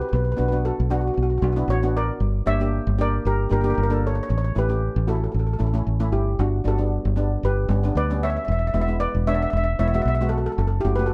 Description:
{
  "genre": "calypso",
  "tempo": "115 BPM",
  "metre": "4/4",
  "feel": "swing 54% on 16ths",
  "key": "unclear",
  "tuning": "A4 = 441 Hz",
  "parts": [
    { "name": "steel pan", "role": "melody", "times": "0.0-11.1 s", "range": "D4 to E5", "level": "-28 LUFS", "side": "equal", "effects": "none" },
    { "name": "steel pan", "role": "accompaniment", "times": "0.0-11.1 s", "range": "G3 to A4", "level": "-31 LUFS", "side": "equal", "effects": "none" },
    { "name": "fingered electric bass", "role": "bass", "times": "0.1-11.1 s", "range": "E1 to D2", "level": "-24 LUFS", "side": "equal", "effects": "none" }
  ],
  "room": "light reverb",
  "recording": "none",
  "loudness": "-22 LUFS",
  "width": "mono",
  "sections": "0.0-11.1 A section",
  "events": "none",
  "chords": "0.1 Bm; 2.2 Gm; 4.3 A; 6.4 G; 8.5 E; 10.6 F#m"
}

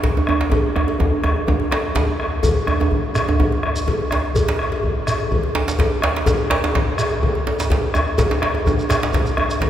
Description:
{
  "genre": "west african traditional, West African drum ensemble",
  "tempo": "125 BPM",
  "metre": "4/4",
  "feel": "swing 53% on 16ths",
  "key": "none",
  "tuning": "none",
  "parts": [
    { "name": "bombo", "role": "percussion", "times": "0.0-9.7 s", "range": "none", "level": "-20 LUFS", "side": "left 1 dB", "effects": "none" },
    { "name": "cowbell", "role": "percussion", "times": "0.0-9.7 s", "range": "none", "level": "-27 LUFS", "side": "right 1 dB", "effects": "none" },
    { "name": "djembe", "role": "percussion", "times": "0.0-9.7 s", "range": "none", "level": "-25 LUFS", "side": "left 2 dB", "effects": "none" },
    { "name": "djembe", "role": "percussion", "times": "0.0-9.7 s", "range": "none", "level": "-21 LUFS", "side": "right 2 dB", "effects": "none" },
    { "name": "shekere", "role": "percussion", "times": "2.4-9.6 s", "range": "none", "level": "-29 LUFS", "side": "right 1 dB", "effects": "none" }
  ],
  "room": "wet cathedral reverb, RT60 6.7 s",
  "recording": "recorded in a church or concert hall",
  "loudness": "-17 LUFS",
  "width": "side -11 dB against mid",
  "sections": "0.0-2.4 A section; 2.4-9.7 B section",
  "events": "drum fill 0.5-2.4",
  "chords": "none"
}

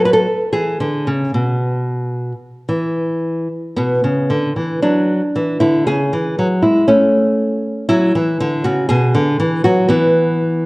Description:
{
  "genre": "classical, baroque-style dance for nylon-string guitar",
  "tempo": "55-61 BPM",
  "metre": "3/4",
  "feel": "rubato",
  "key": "unclear",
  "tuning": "A4 = 440 Hz",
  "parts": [
    { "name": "nylon-string guitar", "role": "solo", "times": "0.0-10.7 s", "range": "B2 to B4", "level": "-14 LUFS", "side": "equal", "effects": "none" }
  ],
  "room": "moderate recital hall reverb, RT60 1.6 s",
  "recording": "worn, warbling old tape, cassette tape, warbly pitch drift",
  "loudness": "-14 LUFS",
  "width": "side -23 dB against mid",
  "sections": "0.0-10.7 A section",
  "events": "none",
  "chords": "0.0 N.C.; 0.5 E; 3.8 Bmadd11; 5.9 C#m; 6.9 F#m/A; 8.9 Bm; 9.9 E5"
}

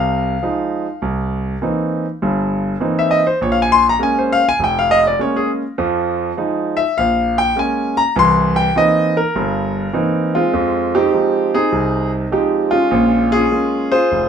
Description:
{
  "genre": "solo jazz",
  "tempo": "101 BPM",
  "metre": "4/4",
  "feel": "swing 68% on 8ths",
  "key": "F minor",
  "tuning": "A4 = 440 Hz",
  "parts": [
    { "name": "clear concert grand piano", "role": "solo", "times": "0.0-14.3 s", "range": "F1 to C6", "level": "-14 LUFS", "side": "equal", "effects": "none" }
  ],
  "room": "light reverb",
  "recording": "minimal, uncompressed stereo recording",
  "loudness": "-14 LUFS",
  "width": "side -7 dB against mid",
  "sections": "0.0-10.5 A section; 10.5-14.3 B section",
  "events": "grand piano solo 0.0-10.5",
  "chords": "0.0 Fm7; 1.0 C7#9; 3.4 Bbm7; 5.8 Fm7; 7.0 Bbm7; 8.2 C7#9; 10.5 Fm7; 12.9 Bbm7"
}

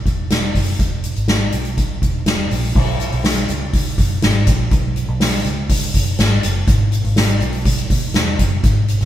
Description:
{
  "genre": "piano-driven pop",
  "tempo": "122 BPM",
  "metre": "4/4",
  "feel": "straight",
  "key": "B major",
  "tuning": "A4 = 440 Hz",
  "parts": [
    { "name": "vintage muted fingered electric bass", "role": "bass", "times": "0.1-9.1 s", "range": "E1 to E2", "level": "-19 LUFS", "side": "equal", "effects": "none" },
    { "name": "soft-mallet drum kit", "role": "drums", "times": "0.1-9.1 s", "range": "crash cymbal, hi-hat, kick drum, snare drum", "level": "-16 LUFS", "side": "equal", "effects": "none" }
  ],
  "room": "moderate studio reverb, RT60 0.5 s",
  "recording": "band playing live in one room",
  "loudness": "-15 LUFS",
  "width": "side -12 dB against mid",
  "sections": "0.0-2.8 A section; 2.8-9.1 B section",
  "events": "none",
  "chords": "none"
}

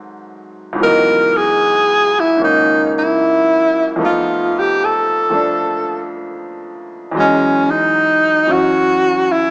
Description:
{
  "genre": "jazz",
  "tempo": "76 BPM",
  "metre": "4/4",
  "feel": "swing 69% on 8ths",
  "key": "unclear",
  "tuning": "A4 = 440 Hz",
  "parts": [
    { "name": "bright upright piano", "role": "accompaniment", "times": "0.0-9.5 s", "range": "C#2 to D#5", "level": "-19 LUFS", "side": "equal", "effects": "none" },
    { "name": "breathy tenor saxophone", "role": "melody", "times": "0.8-9.5 s", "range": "C#4 to A#4", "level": "-12 LUFS", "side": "equal", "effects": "none" }
  ],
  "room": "wet large studio reverb, RT60 1.1 s",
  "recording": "heard from further back in the room, small speaker sound",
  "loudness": "-11 LUFS",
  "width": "side -38 dB against mid",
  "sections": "0.0-9.5 A section",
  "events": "none",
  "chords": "0.0 G#7b9; 0.8 C#m11; 4.0 F7#11; 7.1 Emaj9"
}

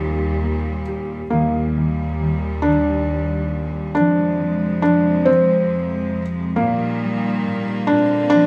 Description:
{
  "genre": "children's music, lullaby",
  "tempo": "45 BPM (dotted quarters)",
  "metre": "6/8",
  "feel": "rubato",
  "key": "Eb major",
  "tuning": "A4 = 440 Hz",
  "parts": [
    { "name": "felt-muted upright piano", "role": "melody", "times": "0.0-8.5 s", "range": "Bb3 to Eb5", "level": "-21 LUFS", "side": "equal", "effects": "none" },
    { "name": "concert harp", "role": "accompaniment", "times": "0.0-8.5 s", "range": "Bb2 to G4", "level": "-25 LUFS", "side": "equal", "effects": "none" },
    { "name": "clear studio string section", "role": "sustained chords", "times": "0.0-8.5 s", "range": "Eb2 to C4", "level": "-26 LUFS", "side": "equal", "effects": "none" }
  ],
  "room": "wet stone room reverb, RT60 1.3 s",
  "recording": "band playing live in one room",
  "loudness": "-20 LUFS",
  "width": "mono",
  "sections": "0.0-1.3 A section; 1.3-8.5 B section",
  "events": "none",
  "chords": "0.0 Eb; 4.0 Fm; 6.6 Eb/Bb; 7.9 Bbadd9"
}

